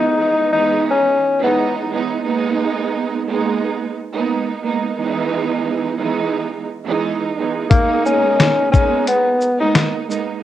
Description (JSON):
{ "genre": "hip hop, boom-bap hip-hop", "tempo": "88 BPM", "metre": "4/4", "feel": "swing 56% on 16ths", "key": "G# minor", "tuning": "A4 = 441 Hz", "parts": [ { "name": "breathy tenor saxophone", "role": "melody", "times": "0.0-1.7, 7.7-9.7 s", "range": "A#3 to D#4", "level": "-16 LUFS", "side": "left 2 dB", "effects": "high-pass filter, low-pass filter, plate reverb" }, { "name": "clear studio string section", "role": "accompaniment", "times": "0.0-10.4 s", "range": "B2 to D#4", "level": "-19 LUFS", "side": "right 6 dB", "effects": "cassette tape, high-pass filter, low-pass filter" }, { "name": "dusty soul sampler-style drum kit", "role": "drums", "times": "7.7-10.3 s", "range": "hi-hat, kick drum, rim click, shaker, snare drum", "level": "-14 LUFS", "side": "left 2 dB", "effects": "cassette tape" } ], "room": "moderate studio reverb, RT60 0.6 s", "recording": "home recording on cassette", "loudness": "-15 LUFS", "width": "side -12 dB against mid", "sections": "0.0-10.4 A section", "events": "none", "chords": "0.0 Emaj7; 2.3 G#madd9; 5.0 Emaj7; 7.7 G#madd9" }